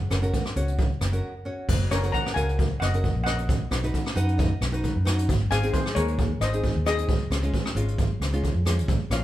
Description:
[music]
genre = calypso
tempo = 133 BPM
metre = 4/4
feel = swing 53% on 16ths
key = F# major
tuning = A4 = 440 Hz
[part]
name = steel pan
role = melody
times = 0.0-9.2 s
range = G#4 to A#5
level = -30 LUFS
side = left 3 dB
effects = none
[part]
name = vintage muted fingered electric bass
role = bass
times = 0.0-9.2 s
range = F#1 to F#2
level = -26 LUFS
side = equal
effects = none
[part]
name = nylon-string guitar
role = accompaniment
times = 0.1-9.2 s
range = G#3 to F#5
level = -31 LUFS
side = equal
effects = none
[part]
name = jazz brush drum kit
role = drums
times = 0.1-9.2 s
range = crash cymbal, hi-hat, kick drum, rim click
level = -27 LUFS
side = equal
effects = none
[sound]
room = moderate large studio reverb, RT60 1.2 s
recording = band playing live in one room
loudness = -22 LUFS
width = side -14 dB against mid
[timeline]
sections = 0.0-1.7 A section; 1.7-9.2 A section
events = break 1.2-1.7; nylon-string guitar fill 3.9-5.3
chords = 0.0 F#; 3.5 B; 5.3 G#; 7.1 C#add9

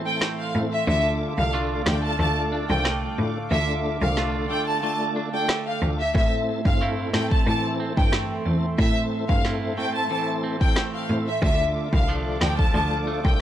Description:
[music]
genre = dancehall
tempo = 91 BPM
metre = 4/4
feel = straight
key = unclear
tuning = A4 = 440 Hz
[part]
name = mellow tonewheel organ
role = accompaniment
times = 0.0-13.4 s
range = A3 to A4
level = -30 LUFS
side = left 2 dB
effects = chorus vibrato, fast rotary speaker, analog delay
[part]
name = warm analog pad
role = sustained chords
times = 0.0-13.4 s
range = A4 to D6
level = -35 LUFS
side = equal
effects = chorus, sidechain pumping
[part]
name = clean electric guitar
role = arpeggios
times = 0.0-13.4 s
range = A2 to F4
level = -31 LUFS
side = right 5 dB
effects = analog delay
[part]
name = rich studio violin section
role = melody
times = 0.1-13.4 s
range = E5 to A5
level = -27 LUFS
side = equal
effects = analog delay
[part]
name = afro-pop drum kit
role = drums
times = 0.2-13.4 s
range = kick drum, rim click, snare drum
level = -23 LUFS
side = equal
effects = vintage 12-bit sampler grit
[part]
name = clear cello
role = bass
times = 0.5-13.4 s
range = C2 to A2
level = -26 LUFS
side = equal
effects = none
[sound]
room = light reverb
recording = echo-heavy mix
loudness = -21 LUFS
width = side -11 dB against mid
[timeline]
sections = 0.0-13.4 A section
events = break 0.0-6.1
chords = 0.0 Am; 0.9 Dm; 6.1 Am; 11.4 Dm

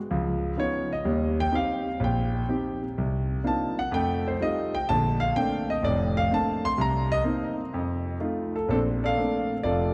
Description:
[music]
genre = solo jazz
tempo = 126 BPM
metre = 4/4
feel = swing 69% on 8ths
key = Bb major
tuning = A4 = 440 Hz
[part]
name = warm concert grand piano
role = solo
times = 0.1-9.9 s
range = F1 to C6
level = -26 LUFS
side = equal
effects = analog delay
[sound]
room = wet cathedral reverb, RT60 4.1 s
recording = dreamy mix soaked in reverb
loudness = -27 LUFS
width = mono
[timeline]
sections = 0.0-8.7 A section; 8.7-9.9 B section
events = grand piano solo 0.0-8.7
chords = 0.1 Db9; 1.1 Eb6; 3.0 Cm11; 3.9 F9; 4.9 Bbmaj9; 6.8 Cm7; 7.7 F7; 8.7 Bbmaj9

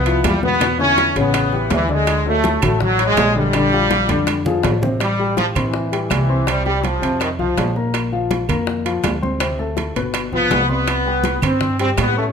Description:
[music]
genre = latin, salsa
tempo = 164 BPM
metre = 4/4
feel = straight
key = A minor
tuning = A4 = 442 Hz
[part]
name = brilliant trombone section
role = melody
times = 0.0-7.7, 10.3-12.3 s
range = D#3 to C#4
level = -18 LUFS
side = equal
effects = none
[part]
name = upright bass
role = bass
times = 0.0-12.3 s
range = G1 to A2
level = -22 LUFS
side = equal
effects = none
[part]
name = dark grand piano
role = accompaniment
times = 0.1-12.3 s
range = B2 to C#6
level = -22 LUFS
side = left 4 dB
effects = none
[part]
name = congas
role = percussion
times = 0.1-12.2 s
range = none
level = -26 LUFS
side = right 1 dB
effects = none
[part]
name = timbales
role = percussion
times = 0.1-12.2 s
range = none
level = -26 LUFS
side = right 7 dB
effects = none
[part]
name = bongos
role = percussion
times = 0.2-12.2 s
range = none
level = -28 LUFS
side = left 7 dB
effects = none
[part]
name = claves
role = percussion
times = 0.2-12.2 s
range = none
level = -32 LUFS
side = right 9 dB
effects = none
[sound]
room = moderate large studio reverb, RT60 1.1 s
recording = minimal, uncompressed stereo recording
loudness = -15 LUFS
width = side -6 dB against mid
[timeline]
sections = 0.0-5.0 A section; 5.0-12.3 B section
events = drum fill 3.9-5.0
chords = 0.0 F5; 0.6 E5; 1.3 A9; 2.1 Dmaj7; 3.5 Bb13; 5.0 Am7; 6.5 C5; 7.2 F5; 7.9 Bb; 9.4 D5; 10.1 G7; 10.9 C5

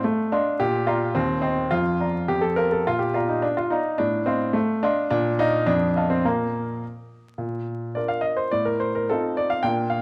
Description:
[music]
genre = classical-period piano sonatina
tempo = 107 BPM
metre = 2/4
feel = straight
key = Bb major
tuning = A4 = 440 Hz
[part]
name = warm baby grand piano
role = solo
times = 0.0-10.0 s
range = Eb2 to C6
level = -23 LUFS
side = equal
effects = none
[sound]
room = moderate recital hall reverb, RT60 1.5 s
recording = close, detailed microphones, vinyl crackle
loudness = -23 LUFS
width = mono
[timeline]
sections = 0.0-7.4 A section; 7.4-10.0 A section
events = none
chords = 0.0 F7/A; 0.6 Bb; 1.2 Cm/Eb; 1.7 Bb/F; 2.3 F; 2.9 Bb; 4.0 F7/A; 5.1 Bb; 5.7 F7; 6.2 Bb5; 7.4 Bb; 8.5 F7/A

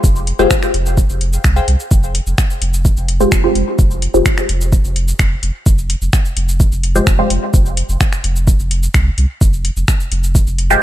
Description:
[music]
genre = dub techno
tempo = 128 BPM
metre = 4/4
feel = straight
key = F minor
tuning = A4 = 440 Hz
[part]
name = pure sine sub bass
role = bass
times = 0.0-10.8 s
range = F1 to C2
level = -16 LUFS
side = equal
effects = sidechain pumping
[part]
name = electronic kick drum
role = drums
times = 0.0-10.4 s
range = none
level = -13 LUFS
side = equal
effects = overdrive
[part]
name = soft vintage rhythm box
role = drums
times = 0.0-10.8 s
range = finger snaps, hi-hat, shaker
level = -22 LUFS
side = equal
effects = none
[part]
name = wavetable chord stab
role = riff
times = 0.4-1.7 s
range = Ab4 to G5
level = -25 LUFS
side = left 3 dB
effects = sidechain pumping, dub echo
[part]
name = filtered dub chord stab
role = stabs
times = 0.4-7.3, 10.7-10.8 s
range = Ab3 to C5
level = -15 LUFS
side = left 1 dB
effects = phaser, sidechain pumping, dub echo
[sound]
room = digital ambience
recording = none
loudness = -12 LUFS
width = side -13 dB against mid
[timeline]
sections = 0.0-1.9 A section; 1.9-10.8 A section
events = none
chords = 0.0 Fmadd9

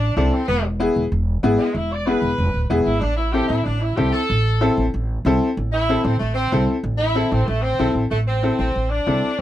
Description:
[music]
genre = latin, cumbia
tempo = 189 BPM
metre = 4/4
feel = straight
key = A harmonic minor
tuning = A4 = 439 Hz
[part]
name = clear saxophone section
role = melody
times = 0.0-9.4 s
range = G#3 to D5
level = -23 LUFS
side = right 1 dB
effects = none
[part]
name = upright bass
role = bass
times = 0.0-9.4 s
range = D1 to C2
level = -21 LUFS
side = right 1 dB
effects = none
[part]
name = bright upright piano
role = accompaniment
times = 0.2-9.3 s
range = B3 to A4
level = -20 LUFS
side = left 2 dB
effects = none
[sound]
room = light reverb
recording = dry, close 1970s-style studio recording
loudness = -18 LUFS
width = side -13 dB against mid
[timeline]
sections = 0.0-8.1 A section; 8.1-9.4 B section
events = saxophone section solo 0.0-8.1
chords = 0.5 E; 3.0 Am

